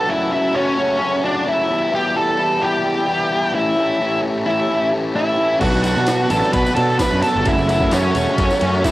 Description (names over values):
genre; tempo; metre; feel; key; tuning
indie rock; 130 BPM; 4/4; straight; B minor; A4 = 440 Hz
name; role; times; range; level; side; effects
octave-fuzz lead guitar; melody; 0.0-8.9 s; C#4 to B4; -18 LUFS; equal; distortion, cassette tape
airy breathy pad; sustained chords; 0.0-8.9 s; F#4 to B5; -28 LUFS; equal; chorus, cassette tape
fuzz guitar; riff; 0.0-8.9 s; F#2 to F#4; -22 LUFS; left 2 dB; distortion, cassette tape
overdriven electric guitar; riff; 5.6-8.9 s; F#2 to D4; -23 LUFS; right 4 dB; wide subtle chorus, cassette tape
fuzz picked electric bass; bass; 5.6-8.8 s; E1 to B2; -20 LUFS; equal; overdrive
jungle sampler-style drum kit; drums; 5.6-8.9 s; crash cymbal, kick drum, ride cymbal, snare drum; -24 LUFS; equal; cassette tape
tambourine; percussion; 5.7-8.9 s; none; -35 LUFS; left 2 dB; none
room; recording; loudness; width
little or no reverb; home recording on cassette; -15 LUFS; side -16 dB against mid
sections
0.0-8.9 A section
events
none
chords
0.1 F#m7; 1.7 Em7; 3.5 A7; 5.6 Bm7; 7.5 F#m7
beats
| 0.08 0.54 1.00 1.46 | 1.92 2.38 2.85 3.31 | 3.77 4.23 4.69 5.15 | 5.61 6.08 6.54 7.00 | 7.46 7.92 8.39 8.85